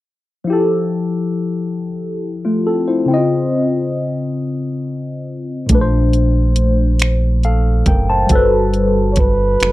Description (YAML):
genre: slow six-eight R&B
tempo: 46 BPM (dotted quarters)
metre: 6/8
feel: straight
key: F major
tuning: A4 = 440 Hz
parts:
  - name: barky tine electric piano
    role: accompaniment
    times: 0.4-9.7 s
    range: Bb2 to A5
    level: -16 LUFS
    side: left 2 dB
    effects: overdrive, phaser
  - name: rubbery square bass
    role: bass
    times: 5.7-9.7 s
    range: Gb1 to Bb1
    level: -16 LUFS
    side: right 1 dB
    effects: none
  - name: smooth R&B drum kit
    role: drums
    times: 5.7-9.7 s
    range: finger snaps, hi-hat, kick drum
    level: -16 LUFS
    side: right 1 dB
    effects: none
  - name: breathy flugelhorn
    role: melody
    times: 9.1-9.7 s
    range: B4 to Db5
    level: -16 LUFS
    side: right 2 dB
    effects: slapback echo
room: little or no reverb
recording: dry, close 1970s-style studio recording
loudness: -14 LUFS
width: side -16 dB against mid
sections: 0.5-9.7 A section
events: none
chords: 0.5 Fmaj9; 3.1 Dbmaj9; 5.7 Bbmaj9; 8.3 Gmaj9